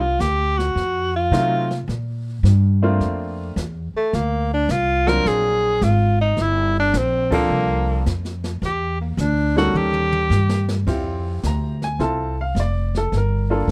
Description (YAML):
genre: jazz, small-group swing and bop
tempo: 107 BPM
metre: 4/4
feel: swing 68% on 8ths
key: D minor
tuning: A4 = 440 Hz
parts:
  - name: bright tenor saxophone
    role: melody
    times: 0.0-10.8 s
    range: A3 to A#4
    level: -23 LUFS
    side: equal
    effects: none
  - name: upright bass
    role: bass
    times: 0.0-13.7 s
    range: F1 to C3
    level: -23 LUFS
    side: equal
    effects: none
  - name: jazz brush drum kit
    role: drums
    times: 0.2-13.7 s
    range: brushed snare drum, crash cymbal, hi-hat, kick drum, snare drum, toms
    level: -32 LUFS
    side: equal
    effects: none
  - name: bright upright piano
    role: accompaniment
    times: 1.3-13.7 s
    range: F3 to Bb5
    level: -26 LUFS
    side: equal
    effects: none
room: light reverb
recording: dark, warm production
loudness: -20 LUFS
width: mono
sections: 0.0-10.9 A section; 10.9-13.7 B section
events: band accent 7.2; drum fill 9.7-10.9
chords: 0.0 Csus2; 0.8 F7b9; 1.9 Bbmaj9; 4.1 D7alt; 6.4 Gm11; 8.6 Em7b5; 9.7 Eb7#11; 10.9 Dm11; 13.1 Gm9